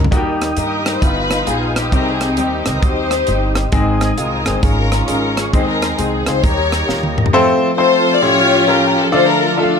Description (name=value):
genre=uptempo gospel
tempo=133 BPM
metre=4/4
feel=swing 64% on 8ths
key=unclear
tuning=A4 = 439 Hz
part: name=clear grand piano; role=accompaniment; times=0.0-9.8 s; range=G2 to B#5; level=-18 LUFS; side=left 2 dB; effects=none
part: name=mellow tonewheel organ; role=sustained chords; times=0.0-9.8 s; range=D3 to Eb6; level=-24 LUFS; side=right 2 dB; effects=fast rotary speaker, chorus vibrato
part: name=upright bass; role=bass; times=0.0-7.3 s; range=G1 to G2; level=-21 LUFS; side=right 1 dB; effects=none
part: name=tight funk drum kit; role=drums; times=0.0-7.3 s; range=hi-hat, kick drum, rim click, snare drum, toms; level=-19 LUFS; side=equal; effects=none
part: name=warm French horn section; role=sustained chords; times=0.1-7.3 s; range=Eb3 to F4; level=-29 LUFS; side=right 2 dB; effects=none
part: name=warm studio string section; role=melody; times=0.6-9.8 s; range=C4 to D5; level=-16 LUFS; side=left 3 dB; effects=none
room=light reverb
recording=none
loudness=-13 LUFS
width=side -6 dB against mid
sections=0.1-7.3 A section; 7.3-9.8 B section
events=drum fill 6.9-7.3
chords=0.1 Eb; 1.0 G7alt; 1.9 Cm; 3.7 Ab; 4.6 Db/Ab; 5.5 Ab/Eb; 6.4 Eb; 7.3 F; 8.2 A7alt; 9.1 Dm